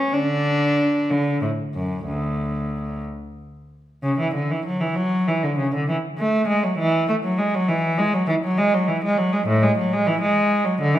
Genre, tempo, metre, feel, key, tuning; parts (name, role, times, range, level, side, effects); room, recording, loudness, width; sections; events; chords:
classical, baroque-style suite movement for unaccompanied cello; 59-69 BPM (dotted quarters); 12/8; rubato; D major; A4 = 435 Hz
rich cello; solo; 0.0-11.0 s; D2 to D4; -19 LUFS; equal
wet recital hall reverb, RT60 1.5 s; minimal, uncompressed stereo recording; -19 LUFS; side -12 dB against mid
0.0-4.0 A section; 4.0-11.0 A section